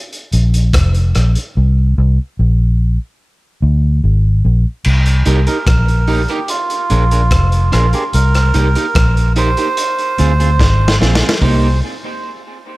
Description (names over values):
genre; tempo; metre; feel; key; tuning
dub reggae; 73 BPM; 4/4; straight; C minor; A4 = 440 Hz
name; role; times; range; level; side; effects
crunchy breakbeat drum kit; drums; 0.1-11.6 s; crash cymbal, hi-hat, kick drum, rim click, snare drum; -18 LUFS; equal; none
vintage muted fingered electric bass; bass; 0.3-11.8 s; F1 to D2; -12 LUFS; equal; none
electric guitar at the edge of break-up; accompaniment; 5.3-11.7 s; Bb3 to Bb4; -21 LUFS; right 3 dB; dub echo
melodica; melody; 5.5-11.8 s; F4 to C5; -19 LUFS; right 3 dB; dub echo
room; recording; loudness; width
small room ambience; none; -11 LUFS; side -19 dB against mid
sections
0.0-4.8 A section; 4.8-11.4 B section; 11.4-12.8 C section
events
break 0.0-4.8; part muted 1.6-4.8; drum fill 10.6-11.4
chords
0.0 Bb5; 1.6 Bbsus2; 3.2 Bb7; 4.8 Cm7; 6.5 Bb7; 8.1 Cm7; 9.8 Dm7b5; 11.4 Cm7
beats
0.73 | 1.56 2.38 3.20 4.02 | 4.84 5.67 6.49 7.31 | 8.13 8.95 9.77 10.59 | 11.41